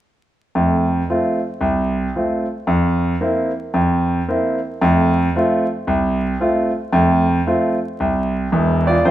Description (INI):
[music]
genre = jazz, stride piano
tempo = 113 BPM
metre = 4/4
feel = swing 62% on 8ths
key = F major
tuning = A4 = 437 Hz
[part]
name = clear grand piano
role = solo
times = 0.6-9.1 s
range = E1 to D5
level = -16 LUFS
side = right 1 dB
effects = none
[sound]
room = wet large studio reverb, RT60 1.3 s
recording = band playing live in one room, vinyl crackle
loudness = -16 LUFS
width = side -13 dB against mid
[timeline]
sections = 0.5-9.1 A section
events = none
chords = 0.5 F; 2.7 C7/F; 4.8 F